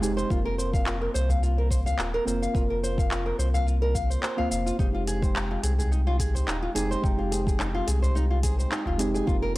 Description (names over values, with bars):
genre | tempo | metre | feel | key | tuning
organic downtempo | 107 BPM | 4/4 | swing 54% on 16ths | F minor | A4 = 440 Hz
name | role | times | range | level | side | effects
muted felt-like synth keys | accompaniment | 0.0-9.6 s | Ab3 to G5 | -31 LUFS | right 1 dB | chorus, sidechain pumping, analog delay
nylon-string guitar | arpeggios | 0.0-9.6 s | Eb4 to F5 | -31 LUFS | equal | analog delay
warm sub bass | bass | 0.0-9.6 s | Eb1 to C2 | -26 LUFS | equal | sidechain pumping
organic electronic drum kit | drums | 0.0-9.6 s | handclaps, hi-hat, shaker | -33 LUFS | equal | none
electronic kick drum | drums | 0.3-9.4 s | none | -26 LUFS | equal | none
udu | percussion | 1.3-9.0 s | none | -32 LUFS | equal | none
room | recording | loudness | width
little or no reverb | dry, gritty hardware recording | -23 LUFS | side -18 dB against mid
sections
0.0-9.6 A section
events
none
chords
0.3 Bbsus2; 4.8 Fm7